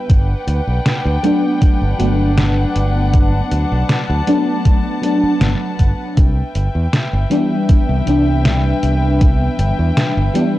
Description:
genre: vaporwave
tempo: 79 BPM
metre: 4/4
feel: straight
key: G major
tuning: A4 = 440 Hz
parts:
  - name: FM electric piano with soft pad layer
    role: accompaniment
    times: 0.0-10.6 s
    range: E3 to D4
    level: -18 LUFS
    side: left 1 dB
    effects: ensemble chorus, tape echo
  - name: warm chamber string section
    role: sustained chords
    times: 0.0-10.6 s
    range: D4 to A5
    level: -23 LUFS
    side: left 2 dB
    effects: none
  - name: modern bright fingered electric bass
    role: bass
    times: 0.1-10.3 s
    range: G1 to E2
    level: -16 LUFS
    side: equal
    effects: none
  - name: detuned 8-bit digital drum machine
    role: drums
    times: 0.1-10.5 s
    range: hi-hat, snare drum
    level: -18 LUFS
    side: equal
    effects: none
  - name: electronic kick drum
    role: drums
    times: 0.1-9.4 s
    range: none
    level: -12 LUFS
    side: equal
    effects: none
room: digital ambience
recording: dark, warm production, cassette tape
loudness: -13 LUFS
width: side -15 dB against mid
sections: 0.0-10.6 A section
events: none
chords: 0.1 Gmaj7; 6.2 Cmaj7

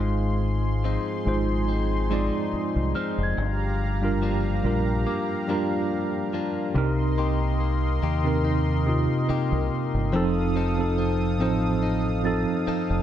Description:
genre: R&B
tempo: 71 BPM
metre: 4/4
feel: swing 54% on 16ths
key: C minor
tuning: A4 = 440 Hz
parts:
  - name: mellow tine electric piano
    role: accompaniment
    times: 0.0-13.0 s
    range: C3 to Eb5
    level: -26 LUFS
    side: right 3 dB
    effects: medium stereo tremolo
  - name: warm analog pad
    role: sustained chords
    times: 0.0-13.0 s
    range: Eb4 to Eb6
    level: -32 LUFS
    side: left 1 dB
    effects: chorus
  - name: direct-recorded clean electric guitar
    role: arpeggios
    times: 0.0-13.0 s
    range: G2 to A4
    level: -31 LUFS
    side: left 9 dB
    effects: tape echo
  - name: deep dub fingered electric bass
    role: bass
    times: 0.0-13.0 s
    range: F1 to Eb2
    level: -26 LUFS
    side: equal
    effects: none
  - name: celesta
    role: texture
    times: 3.0-13.0 s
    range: C6 to A6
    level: -38 LUFS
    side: right 1 dB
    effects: tape echo
room: light reverb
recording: dark, warm production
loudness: -22 LUFS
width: side -10 dB against mid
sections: 0.0-6.8 A section; 6.8-13.0 B section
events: none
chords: 0.0 Ab6; 3.4 Gm7; 10.1 F7

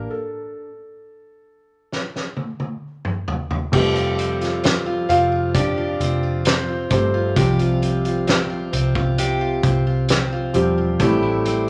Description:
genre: pop ballad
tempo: 66 BPM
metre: 4/4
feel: straight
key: F major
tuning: A4 = 440 Hz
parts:
  - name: warm grand piano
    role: melody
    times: 0.0-8.7 s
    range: C4 to F5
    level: -26 LUFS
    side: equal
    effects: none
  - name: felt-muted upright piano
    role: accompaniment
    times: 0.0-11.7 s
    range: A2 to Bb4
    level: -25 LUFS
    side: equal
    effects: none
  - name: picked steel-string acoustic guitar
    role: arpeggios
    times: 0.0-11.7 s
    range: C3 to G4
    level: -28 LUFS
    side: equal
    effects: none
  - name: vintage muted fingered electric bass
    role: bass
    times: 0.0-11.7 s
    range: E1 to C2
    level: -26 LUFS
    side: equal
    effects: none
  - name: loose indie drum kit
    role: drums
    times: 1.9-11.7 s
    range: crash cymbal, hi-hat, kick drum, snare drum, toms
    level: -25 LUFS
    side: equal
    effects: none
room: moderate large studio reverb, RT60 1.3 s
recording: none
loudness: -20 LUFS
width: mono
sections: 0.0-3.7 A section; 3.7-11.7 B section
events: drum fill 1.9-3.7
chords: 0.1 N.C.; 3.7 Fadd9; 7.4 Csus4; 11.0 Am7

